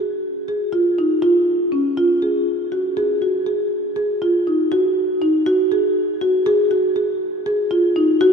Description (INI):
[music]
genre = contemporary instrumental, contemporary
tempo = 241 BPM (eighths)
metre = 7/8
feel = straight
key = unclear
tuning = A4 = 442 Hz
[part]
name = marimba with soft mallets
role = solo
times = 0.0-8.3 s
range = Db4 to Ab4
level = -16 LUFS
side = equal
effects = none
[sound]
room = wet cathedral reverb, RT60 5.5 s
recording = in a vast, echoing space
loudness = -16 LUFS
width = side -6 dB against mid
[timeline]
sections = 0.0-4.7 A section; 4.7-8.3 B section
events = none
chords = none